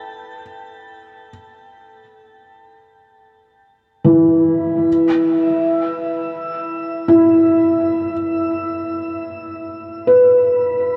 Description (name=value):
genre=ambient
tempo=free time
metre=none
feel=none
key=unclear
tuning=A4 = 440 Hz
part: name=felt-muted upright piano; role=solo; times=0.0-11.0 s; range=E3 to G5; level=-17 LUFS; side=equal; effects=diffuse ambient delay
room=wet shimmer reverb, RT60 6.4 s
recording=worn, warbling old tape, cassette tape, warbly pitch drift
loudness=-16 LUFS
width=mono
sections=0.0-11.0 A section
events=none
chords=0.0 Em; 4.9 N.C.